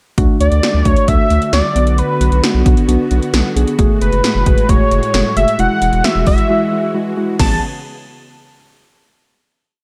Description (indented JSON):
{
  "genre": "synth-pop",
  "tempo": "133 BPM",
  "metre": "4/4",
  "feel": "straight",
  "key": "A major",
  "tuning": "A4 = 440 Hz",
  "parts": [
    { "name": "muted felt-like synth keys", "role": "accompaniment", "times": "0.2-7.6 s", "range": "G#3 to A4", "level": "-21 LUFS", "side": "equal", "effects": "chorus" },
    { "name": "string machine, violas", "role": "sustained chords", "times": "0.2-7.6 s", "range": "A2 to G#4", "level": "-26 LUFS", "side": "equal", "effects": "ensemble chorus" },
    { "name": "round analog bass", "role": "bass", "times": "0.2-7.6 s", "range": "E1 to D2", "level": "-18 LUFS", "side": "equal", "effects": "none" },
    { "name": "80s electronic pad drums", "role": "drums", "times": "0.2-7.5 s", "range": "crash cymbal, hi-hat, kick drum, snare drum", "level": "-18 LUFS", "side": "equal", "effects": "none" },
    { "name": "octave-doubled lead", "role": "melody", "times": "0.4-7.6 s", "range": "B4 to A5", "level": "-19 LUFS", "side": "equal", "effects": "chorus" }
  ],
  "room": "light reverb, digital ambience",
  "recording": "dark, warm production",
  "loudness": "-14 LUFS",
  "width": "mono",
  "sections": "0.2-7.4 pre-chorus; 7.4-9.2 final chord",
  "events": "break 6.5-7.4",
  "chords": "0.2 D; 1.8 Bm; 3.8 F#madd9; 5.6 Eadd9; 7.4 Amaj9",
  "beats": "| 0.18 0.63 1.08 1.53 | 1.98 2.43 2.88 3.34 | 3.79 4.24 4.69 5.14 | 5.59 6.04 6.49 6.95 | 7.40"
}